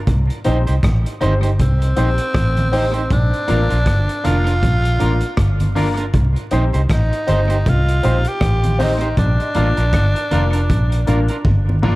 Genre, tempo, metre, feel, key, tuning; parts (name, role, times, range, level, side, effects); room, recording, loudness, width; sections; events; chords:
roots reggae; 79 BPM; 4/4; swing 57% on 16ths; C dorian; A4 = 442 Hz
vintage muted fingered electric bass; bass; 0.0-12.0 s; F1 to C2; -17 LUFS; equal
crunchy breakbeat drum kit; drums; 0.1-12.0 s; hi-hat, kick drum, rim click, toms; -21 LUFS; equal; analog delay
congas; percussion; 0.1-12.0 s; -27 LUFS; right 2 dB
electric guitar at the edge of break-up; accompaniment; 0.4-12.0 s; D4 to C5; -26 LUFS; right 3 dB; analog delay
warm concert grand piano; stabs; 0.4-12.0 s; Bb3 to C5; -24 LUFS; left 3 dB
raspy tenor saxophone; melody; 1.6-11.8 s; C4 to G4; -22 LUFS; equal; analog delay
small room ambience; echo-heavy mix, vinyl crackle; -14 LUFS; side -19 dB against mid
0.1-12.0 A section
drum fill 11.4-12.0
0.1 Cm; 3.1 Bb; 6.1 Cm; 9.2 Bb